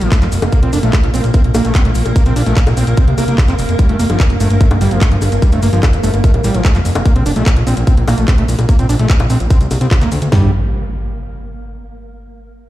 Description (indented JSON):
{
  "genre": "psychedelic trance",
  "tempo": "147 BPM",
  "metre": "4/4",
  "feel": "straight",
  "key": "unclear",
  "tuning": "A4 = 439 Hz",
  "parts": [
    { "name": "swarming drone", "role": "sustained chords", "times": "0.0-10.3 s", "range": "Bb3 to Bb4", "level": "-23 LUFS", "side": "right 1 dB", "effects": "built-in reverb, sidechain pumping" },
    { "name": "screaming distorted acid line", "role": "riff", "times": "0.0-10.5 s", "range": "F3 to F4", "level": "-20 LUFS", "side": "equal", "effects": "distortion, chorus, auto-pan, sidechain pumping, tape echo" },
    { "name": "fat analog bass", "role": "bass", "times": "0.0-10.5 s", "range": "F1 to D2", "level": "-14 LUFS", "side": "equal", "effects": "none" },
    { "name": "garage drum kit", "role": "drums", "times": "0.0-10.3 s", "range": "bongos, handclaps, hi-hat", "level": "-23 LUFS", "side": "left 2 dB", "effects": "small room ambience" },
    { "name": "maracas", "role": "percussion", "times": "0.0-10.3 s", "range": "none", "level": "-33 LUFS", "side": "left 4 dB", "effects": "none" },
    { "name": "garage drum kit", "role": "drums", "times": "0.1-10.4 s", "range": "kick drum, snare drum, toms", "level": "-10 LUFS", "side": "equal", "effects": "small room ambience" },
    { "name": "impact", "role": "sound effects", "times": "10.4-12.0 s", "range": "none", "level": "-21 LUFS", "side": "equal", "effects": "none" }
  ],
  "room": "digital ambience",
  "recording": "played on a big sound system in a bare room, large studio reverb",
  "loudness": "-10 LUFS",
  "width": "side -15 dB against mid",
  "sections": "0.0-10.3 A section; 10.3-12.0 B section",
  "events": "none",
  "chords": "0.0 Fadd11; 0.5 Bb5; 3.8 Fadd11; 7.1 Bb5; 10.3 N.C."
}